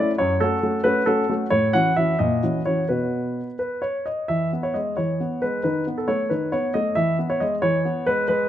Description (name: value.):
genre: classical-period piano sonatina.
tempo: 90 BPM (dotted quarters).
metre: 6/8.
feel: rubato.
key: E major.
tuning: A4 = 438 Hz.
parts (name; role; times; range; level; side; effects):
warm baby grand piano; solo; 0.0-8.5 s; F#2 to F#5; -20 LUFS; equal; none.
room: moderate recital hall reverb, RT60 1.5 s.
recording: close, detailed microphones.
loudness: -20 LUFS.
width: side -11 dB against mid.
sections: 0.0-4.3 A section; 4.3-8.5 B section.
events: none.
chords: 0.2 F#m; 1.5 F#m7/A; 2.2 F#7/A#; 2.9 B5; 4.3 E; 5.7 B7/D#; 7.0 E.